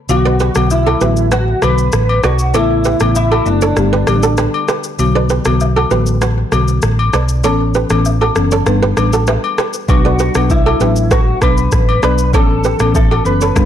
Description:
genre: afrobeats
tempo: 98 BPM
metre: 4/4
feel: straight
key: B minor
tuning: A4 = 444 Hz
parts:
  - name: electric guitar at the edge of break-up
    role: melody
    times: 0.1-4.6, 9.9-13.7 s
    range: D4 to B4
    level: -18 LUFS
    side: equal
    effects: ensemble chorus, ping-pong delay
  - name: folk marimba with medium mallets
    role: accompaniment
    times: 0.1-13.7 s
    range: C#3 to B4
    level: -18 LUFS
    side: left 4 dB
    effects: none
  - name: hollow-body short-scale fingered electric bass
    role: bass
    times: 0.1-13.7 s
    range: F#1 to B1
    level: -15 LUFS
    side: equal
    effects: none
  - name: afro-pop drum kit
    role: drums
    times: 0.1-13.7 s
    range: kick drum, rim click, shaker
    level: -18 LUFS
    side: equal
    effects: soft clipping on snare
  - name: agogo bells and woodblock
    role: percussion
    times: 0.1-13.2 s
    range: none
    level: -22 LUFS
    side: left 8 dB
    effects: none
  - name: kora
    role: riff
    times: 0.3-13.5 s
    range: F#4 to D5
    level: -18 LUFS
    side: right 6 dB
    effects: ping-pong delay
room: digital ambience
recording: blown-out, overdriven recording, overdrive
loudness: -11 LUFS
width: side -10 dB against mid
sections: 0.1-13.7 A section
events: kick muted 0.1-9.9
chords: 0.1 Bm; 2.5 Aadd9; 3.8 G; 5.0 Bm; 7.4 Aadd9; 8.7 G; 9.9 Bm; 12.3 Aadd9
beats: | 0.09 0.70 1.32 1.93 | 2.54 3.15 3.77 4.38 | 4.99 5.60 6.21 6.83 | 7.44 8.05 8.66 9.28 | 9.89 10.50 11.11 11.72 | 12.34 12.95 13.56

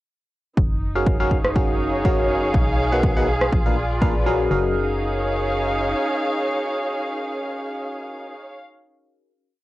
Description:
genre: piano house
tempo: 122 BPM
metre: 4/4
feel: swing 54% on 16ths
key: F# major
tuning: A4 = 440 Hz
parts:
  - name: organ-like FM bass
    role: bass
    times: 0.6-5.9 s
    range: F#1 to B1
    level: -26 LUFS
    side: equal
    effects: sidechain pumping
  - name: electronic kick drum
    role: drums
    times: 0.6-4.1 s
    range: none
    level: -21 LUFS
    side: equal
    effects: none
  - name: muted chamber string section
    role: texture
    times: 0.6-8.6 s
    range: D#4 to E#5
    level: -24 LUFS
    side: equal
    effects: sidechain pumping
  - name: barking FM electric piano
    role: riff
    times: 1.0-8.3 s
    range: A#2 to F#5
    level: -25 LUFS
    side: left 1 dB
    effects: phaser, sidechain pumping, low-pass filter, analog delay
  - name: electronic rim click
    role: drums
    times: 1.4-3.5 s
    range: none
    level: -21 LUFS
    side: equal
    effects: none
room: light reverb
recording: home recording on cassette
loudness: -19 LUFS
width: side -16 dB against mid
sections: 0.6-4.5 breakdown; 4.5-8.4 final chord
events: none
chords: 0.6 F#maj9; 2.5 Bmaj7; 3.5 A#7b9; 4.5 F#maj9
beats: | 0.57 1.07 1.56 2.05 | 2.54 3.03 3.52 4.02 | 4.51 5.00 5.49 5.98 | 6.48 6.97 7.46 7.95

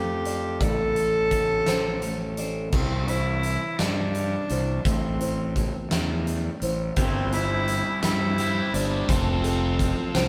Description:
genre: post-rock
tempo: 57 BPM (dotted quarters)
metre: 6/8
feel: straight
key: C major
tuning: A4 = 440 Hz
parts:
  - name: warm cello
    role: melody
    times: 0.0-10.3 s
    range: C4 to A4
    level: -30 LUFS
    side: equal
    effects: tape echo
  - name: electric guitar through a small old amp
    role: arpeggios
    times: 0.0-10.3 s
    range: F2 to E4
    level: -37 LUFS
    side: equal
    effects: none
  - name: felt-muted upright piano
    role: arpeggios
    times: 0.0-10.3 s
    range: A4 to E5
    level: -37 LUFS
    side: equal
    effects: none
  - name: fuzz fingered electric bass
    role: bass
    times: 0.0-10.3 s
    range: F1 to G2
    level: -30 LUFS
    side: equal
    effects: overdrive
  - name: huge arena drum kit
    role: drums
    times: 0.3-10.3 s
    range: crash cymbal, hi-hat, kick drum, snare drum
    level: -31 LUFS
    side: equal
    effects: none
  - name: cranked stack guitar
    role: riff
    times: 7.0-10.3 s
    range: F3 to A4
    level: -32 LUFS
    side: equal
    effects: overdrive, phaser
room: moderate studio reverb, RT60 0.8 s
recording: band playing live in one room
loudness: -25 LUFS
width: mono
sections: 0.0-2.7 A section; 2.7-10.3 B section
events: none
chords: 0.0 F; 0.6 Am; 2.7 C; 4.9 Am7; 7.0 C/G; 9.1 F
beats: | 0.61 1.67 | 2.73 3.79 | 4.86 5.92 | 6.98 8.04 | 9.10 10.16

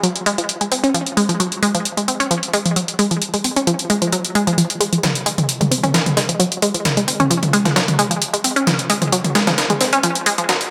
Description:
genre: driving peak-time techno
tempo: 132 BPM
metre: 4/4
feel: straight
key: F phrygian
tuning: A4 = 437 Hz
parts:
  - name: unison pluck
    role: riff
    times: 0.0-10.5 s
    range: F3 to Db4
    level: -20 LUFS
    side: equal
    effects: delay
  - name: punchy analog drum machine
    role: drums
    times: 0.0-10.7 s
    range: hi-hat, toms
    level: -22 LUFS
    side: equal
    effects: gated reverb
  - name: breakbeat sampler-style drum kit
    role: drums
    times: 4.6-10.6 s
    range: hi-hat, snare drum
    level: -24 LUFS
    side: equal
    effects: high-pass filter on hats, high-pass filter on snare, gated reverb
room: moderate plate reverb, RT60 2.7 s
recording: bright 1980s-style digital production, high-pass filter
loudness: -18 LUFS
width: mono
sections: 0.0-4.6 A section; 4.6-10.7 B section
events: build-up 4.6-10.7; filter sweep on synth arpeggio sound 4.6-10.7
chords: none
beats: 0.04 0.49 | 0.94 1.40 1.85 2.31 | 2.76 3.22 3.67 4.13 | 4.58 5.04 5.49 5.94 | 6.40 6.85 7.31 7.76 | 8.22 8.67 9.13 9.58 | 10.04 10.49

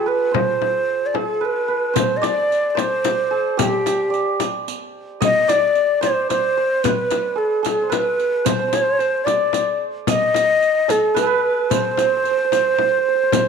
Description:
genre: Persian modal ensemble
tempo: 74 BPM (dotted quarters)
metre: 6/8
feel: straight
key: C avaz esfahan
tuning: A4 = 440 Hz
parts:
  - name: breathy ney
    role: melody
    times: 0.0-13.5 s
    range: G4 to Eb5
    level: -18 LUFS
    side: equal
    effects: none
  - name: santur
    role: second line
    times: 0.0-13.5 s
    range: F4 to Eb5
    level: -25 LUFS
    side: right 8 dB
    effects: none
  - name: frame drum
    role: percussion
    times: 0.3-13.4 s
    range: none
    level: -24 LUFS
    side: left 12 dB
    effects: none
  - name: riq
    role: percussion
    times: 2.0-13.5 s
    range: none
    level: -28 LUFS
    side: right 14 dB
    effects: none
room: moderate echo chamber reverb, RT60 1.5 s, small room ambience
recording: 1960s-style stereo with parts hard left and right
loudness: -16 LUFS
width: side -6 dB against mid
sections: 0.0-2.0 A section; 2.0-13.5 B section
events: none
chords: none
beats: | 0.34 1.15 | 1.96 2.77 | 3.58 4.40 | 5.21 6.02 | 6.83 7.64 | 8.46 9.27 | 10.08 10.89 | 11.70 12.51 | 13.32

